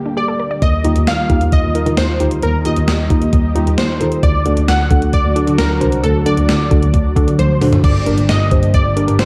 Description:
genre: synth-pop.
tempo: 133 BPM.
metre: 4/4.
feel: straight.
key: unclear.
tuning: A4 = 440 Hz.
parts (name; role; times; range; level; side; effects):
funky polysynth comp; melody; 0.0-9.3 s; G4 to F#5; -23 LUFS; equal; chorus, analog delay, shimmer reverb.
string machine, cellos; sustained chords; 0.0-9.3 s; D3 to G4; -26 LUFS; equal; ensemble chorus, shimmer reverb.
unison pluck; arpeggios; 0.0-0.6 s; D4 to D5; -29 LUFS; equal; analog delay, shimmer reverb.
muted double bass; bass; 0.6-9.3 s; G1 to Eb3; -18 LUFS; equal; none.
gated 80s digital drum machine; drums; 0.6-9.3 s; crash cymbal, hi-hat, kick drum, snare drum, toms; -18 LUFS; equal; gated reverb, gated reverb snare.
warbly dusty pluck; accompaniment; 0.8-9.2 s; D4 to C5; -22 LUFS; equal; chorus, shimmer reverb.
room: light reverb.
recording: dark, warm production.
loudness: -14 LUFS.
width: mono.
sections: 0.6-9.3 A section.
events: break 0.0-0.6; drum fill 7.4-7.8.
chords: 0.0 Gmadd9; 0.6 Ebadd9; 4.2 D; 7.8 Gm.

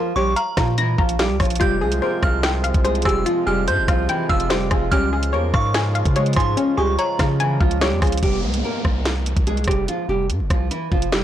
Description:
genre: hip hop, drill.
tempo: 145 BPM.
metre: 4/4.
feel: half-time.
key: F harmonic minor.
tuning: A4 = 439 Hz.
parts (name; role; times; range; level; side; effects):
nylon-string guitar; melody; 0.0-11.2 s; E3 to Db5; -24 LUFS; right 2 dB; ping-pong delay.
hollow square pluck; accompaniment; 0.0-8.2 s; Db4 to Bb6; -25 LUFS; left 6 dB; chorus.
delicate synth tine bell; second line; 0.2-7.8 s; Bb5 to G6; -26 LUFS; right 2 dB; chorus, ping-pong delay.
long sustained 808-style bass; bass; 0.2-11.2 s; F1 to Db3; -22 LUFS; equal; none.
drill drum kit; drums; 0.4-11.2 s; hi-hat, kick drum, rim click, snare drum; -21 LUFS; equal; soft clipping on snare.
pedal harmonium; sustained chords; 1.6-8.2 s; C3 to F4; -28 LUFS; right 3 dB; stereo widening.
downlifter; sound effects; 8.2-11.2 s; none; -30 LUFS; right 1 dB; none.
room: little or no reverb.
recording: blown-out, overdriven recording, vinyl crackle, overdrive.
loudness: -17 LUFS.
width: side -11 dB against mid.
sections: 0.0-8.2 A section; 8.2-11.2 B section.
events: none.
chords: 0.0 Bbm; 1.6 Fmadd9; 4.9 Db; 8.2 Fmadd9.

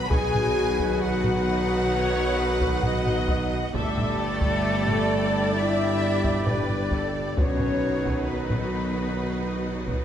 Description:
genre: cinematic, epic orchestral film score.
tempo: 66 BPM.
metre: 4/4.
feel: straight.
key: unclear.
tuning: A4 = 440 Hz.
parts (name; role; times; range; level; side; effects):
warm symphonic violin section; melody; 0.0-10.0 s; A4 to G#5; -35 LUFS; left 3 dB; none.
silver concert flute; second line; 0.0-10.0 s; A4 to G#5; -34 LUFS; left 1 dB; none.
warm symphonic violin section; second line; 0.0-10.0 s; A4 to G#5; -36 LUFS; left 2 dB; none.
rich symphonic viola section; accompaniment; 0.0-10.0 s; F#4 to E5; -33 LUFS; left 1 dB; none.
clear trombone section; sustained chords; 0.0-10.0 s; D3 to G3; -34 LUFS; right 3 dB; none.
mellow French horn section; sustained chords; 0.0-10.0 s; A3 to B4; -28 LUFS; left 4 dB; none.
rich symphonic string section; sustained chords; 0.0-10.0 s; D4 to G5; -36 LUFS; equal; none.
dark trumpet section; stabs; 0.0-10.0 s; B4 to D5; -33 LUFS; right 2 dB; none.
mellow tuba; bass; 0.0-10.0 s; G1 to B1; -33 LUFS; right 3 dB; none.
rich symphonic cello section; bass; 0.0-10.0 s; G2 to B2; -34 LUFS; right 2 dB; none.
rich symphonic double bass section; bass; 0.0-10.0 s; G1 to B1; -33 LUFS; right 2 dB; none.
taiko ensemble; drums; 0.1-10.0 s; none; -28 LUFS; equal; none.
reverse cymbal; sound effects; 7.4-10.0 s; none; barely audible; none; none.
room: moderate concert hall reverb, RT60 2.5 s.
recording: none.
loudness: -22 LUFS.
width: side -9 dB against mid.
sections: 0.0-10.0 A section.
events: none.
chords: 0.0 B; 3.7 Gsus2; 7.4 B.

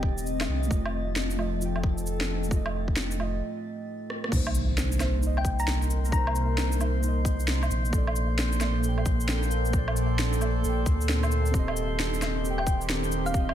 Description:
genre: future garage.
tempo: 133 BPM.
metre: 4/4.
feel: swing 63% on 16ths.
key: C dorian.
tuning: A4 = 439 Hz.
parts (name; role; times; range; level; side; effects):
thumb-piano-like synth pluck; melody; 0.0-0.2, 5.4-6.8, 12.6-13.5 s; F5 to Bb5; -33 LUFS; left 2 dB; chorus, tape echo.
muted felt-like synth keys; accompaniment; 0.0-13.5 s; A3 to G5; -34 LUFS; right 2 dB; chorus, sidechain pumping, tape echo.
warbly tape-like pad; sustained chords; 0.0-13.5 s; Bb2 to Eb5; -34 LUFS; equal; chorus, built-in reverb, sidechain pumping.
warm sub bass; bass; 0.0-13.5 s; Eb1 to D2; -28 LUFS; equal; sidechain pumping.
electronic kick drum; drums; 0.0-13.5 s; none; -27 LUFS; equal; overdrive.
drifting glass-harmonics texture; texture; 0.0-13.5 s; A3 to A6; -38 LUFS; equal; chorus, built-in reverb.
organic electronic drum kit; drums; 0.2-13.5 s; cabasa, crash cymbal, rim click, shaker, snare drum, woodblock; -32 LUFS; equal; overdrive.
impact; sound effects; 4.3-6.1 s; none; -35 LUFS; left 1 dB; none.
room: light reverb.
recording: none.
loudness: -24 LUFS.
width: side -11 dB against mid.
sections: 0.0-4.3 A section; 4.3-13.5 B section.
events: break 3.4-4.3; drum fill 4.1; impact 4.3-6.1.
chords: 0.0 Eb6; 0.7 F7; 4.3 Cm7; 7.9 Bbmaj7; 11.5 Eb6.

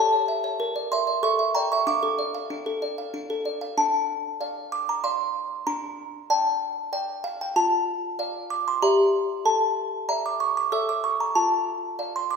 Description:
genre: classical, lullaby for music box.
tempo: 95 BPM.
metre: 3/4.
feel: straight.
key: D minor.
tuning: A4 = 441 Hz.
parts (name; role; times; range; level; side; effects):
music box; solo; 0.0-12.4 s; D4 to E6; -22 LUFS; equal; none.
room: wet recital hall reverb, RT60 1.7 s.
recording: heard from further back in the room.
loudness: -23 LUFS.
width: side -5 dB against mid.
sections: 0.0-3.8 A section; 3.8-12.4 B section.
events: none.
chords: 0.0 A; 0.6 Bb; 1.2 A7; 1.9 Dm; 5.7 Gm/D; 7.6 Dm/F; 8.8 Em7b5/G; 9.4 Asus4; 11.4 Dm/F.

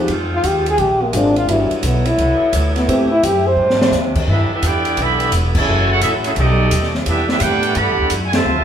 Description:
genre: jazz, big band swing.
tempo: 172 BPM.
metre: 4/4.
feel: swing 65% on 8ths.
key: G major.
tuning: A4 = 440 Hz.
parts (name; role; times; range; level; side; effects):
warm baby grand piano; accompaniment; 0.0-3.1 s; G3 to G4; -22 LUFS; left 1 dB; none.
warm saxophone section; sustained chords; 0.0-8.6 s; C3 to G4; -25 LUFS; equal; none.
upright bass; bass; 0.0-8.6 s; E1 to A2; -19 LUFS; equal; none.
open jazz drum kit; drums; 0.1-8.4 s; crash cymbal, hi-hat, kick drum, ride cymbal, snare drum; -22 LUFS; equal; none.
mellow trombone; melody; 0.3-3.9 s; G3 to C5; -16 LUFS; equal; none.
brilliant trumpet section; melody; 4.3-8.6 s; A3 to B5; -19 LUFS; right 2 dB; none.
dark trombone section; second line; 4.3-8.6 s; C3 to G4; -23 LUFS; right 2 dB; none.
room: wet large studio reverb, RT60 1.4 s.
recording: band playing live in one room.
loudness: -14 LUFS.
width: side -9 dB against mid.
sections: 0.0-4.3 A section; 4.3-8.6 B section.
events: trombone solo 0.0-4.3; drum fill 3.6-3.9; band accent 5.5, 8.3.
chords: 0.1 Fm7; 0.8 Bb9; 1.5 Cmaj9#11; 2.9 Am7; 3.6 Ab7#11; 4.3 G6; 5.7 F#m9; 6.4 B7alt; 7.1 Em11.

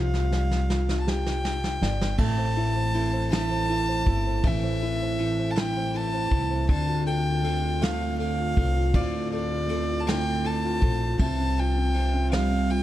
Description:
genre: six-eight pop ballad.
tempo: 53 BPM (dotted quarters).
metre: 6/8.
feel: straight.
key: unclear.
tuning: A4 = 444 Hz.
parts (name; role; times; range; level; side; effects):
clear violin; melody; 0.0-12.8 s; D5 to A5; -30 LUFS; right 1 dB; ping-pong delay.
felt-muted upright piano; accompaniment; 0.0-12.8 s; A2 to G5; -29 LUFS; equal; none.
upright bass; bass; 0.0-12.8 s; G1 to D2; -27 LUFS; equal; none.
vintage brush drum kit; drums; 0.1-12.8 s; crash cymbal, kick drum, ride cymbal, snare drum; -30 LUFS; equal; none.
twelve-string electric guitar; arpeggios; 2.2-12.8 s; A2 to C5; -33 LUFS; right 1 dB; none.
room: light reverb.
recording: dark, warm production.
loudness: -23 LUFS.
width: side -13 dB against mid.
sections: 0.0-2.2 A section; 2.2-12.8 B section.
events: drum fill 0.0-2.2; felt piano fill 1.1-2.2.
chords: 0.0 Csus4; 2.2 Am; 6.7 Dm7; 11.2 Csus4.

